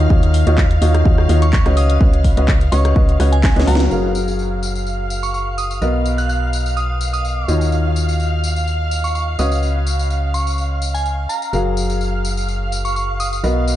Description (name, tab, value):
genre	piano house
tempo	126 BPM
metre	4/4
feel	swing 53% on 16ths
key	F# major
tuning	A4 = 440 Hz
part	string machine, violins	sustained chords	0.0-13.8 s	E#5 to E#6	-27 LUFS	right 1 dB	ensemble chorus, sidechain pumping
part	clear upright piano	riff	0.0-13.8 s	D#3 to F#5	-22 LUFS	left 2 dB	sidechain pumping, low-pass filter, diffuse ambient delay
part	organ-like FM bass	bass	0.0-13.8 s	F#1 to D#2	-17 LUFS	equal	tube saturation, sidechain pumping
part	electronic kick drum	drums	0.1-3.5 s	none	-14 LUFS	equal	none
part	house drum kit	drums	0.2-13.8 s	handclaps, hi-hat, rim click, snare drum, tambourine	-26 LUFS	left 1 dB	none
part	glassy synth bell	melody	1.4-13.4 s	G#5 to F#6	-26 LUFS	right 2 dB	chorus, diffuse ambient delay
room	light reverb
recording	nothing above 10.3 kHz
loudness	-15 LUFS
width	side -13 dB against mid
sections	0.0-3.9 A section; 3.9-13.8 B section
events	drum fill 3.4-3.9; band accent 3.8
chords	0.0 C#9sus4; 3.9 F#maj9; 5.8 Bmaj7; 7.5 D#m9; 9.4 C#9sus4; 11.5 F#maj9